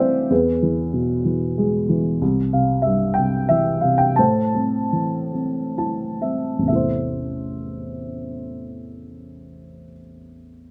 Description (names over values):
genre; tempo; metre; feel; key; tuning
classical, lyrical solo piano; 44-63 BPM (dotted quarters); 6/8; rubato; A minor; A4 = 440 Hz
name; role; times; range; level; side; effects
dark upright piano; solo; 0.0-10.7 s; A1 to A5; -22 LUFS; equal; none
room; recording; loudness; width
light reverb; none; -21 LUFS; mono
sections
0.0-6.7 A section; 6.7-10.7 B section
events
slowing down 2.2-6.7; upright piano fill 5.4-6.7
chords
0.3 E; 2.2 C; 4.2 Am